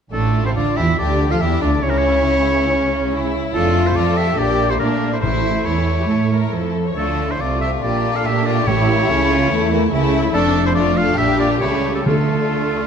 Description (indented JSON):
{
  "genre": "quick classical-period movement for symphony orchestra",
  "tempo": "141 BPM",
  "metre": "4/4",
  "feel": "rubato",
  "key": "D minor",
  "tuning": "A4 = 439 Hz",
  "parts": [
    { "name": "rich chamber violin section", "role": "melody", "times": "0.1-12.9 s", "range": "A3 to A4", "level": "-27 LUFS", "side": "left 6 dB", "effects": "none" },
    { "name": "clear chamber violin section", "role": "second line", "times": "0.1-12.9 s", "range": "G3 to G4", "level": "-22 LUFS", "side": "left 3 dB", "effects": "none" },
    { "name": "clear oboe", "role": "second line", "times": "0.1-12.9 s", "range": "F4 to F5", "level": "-22 LUFS", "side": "equal", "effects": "none" },
    { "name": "rich studio viola section", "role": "accompaniment", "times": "0.1-12.9 s", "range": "A3 to C#5", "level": "-24 LUFS", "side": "equal", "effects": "none" },
    { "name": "rich symphonic double bass section", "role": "bass", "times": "0.1-12.9 s", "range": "F1 to Bb2", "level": "-22 LUFS", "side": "right 3 dB", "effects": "none" },
    { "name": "warm chamber cello section", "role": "bass", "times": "0.1-12.9 s", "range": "F2 to Bb3", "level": "-22 LUFS", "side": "right 3 dB", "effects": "none" },
    { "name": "timpani", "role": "percussion", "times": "5.2-5.8, 8.7-9.3, 12.1-12.7 s", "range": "A2 to D3", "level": "-23 LUFS", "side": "equal", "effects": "none" }
  ],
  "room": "moderate scoring stage reverb, RT60 1.6 s",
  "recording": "dark, warm production",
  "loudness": "-15 LUFS",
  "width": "side -7 dB against mid",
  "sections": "0.1-12.9 A section",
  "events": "none",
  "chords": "0.1 Dm/A; 1.0 G5/D; 1.8 C#m; 3.5 Fmaj13; 4.4 Gm/Bb; 5.2 A; 7.0 Dm; 7.8 Gm/Bb; 8.7 A; 10.3 Dm/F; 11.2 Gm/Bb; 11.6 A7/C#; 12.1 Dm"
}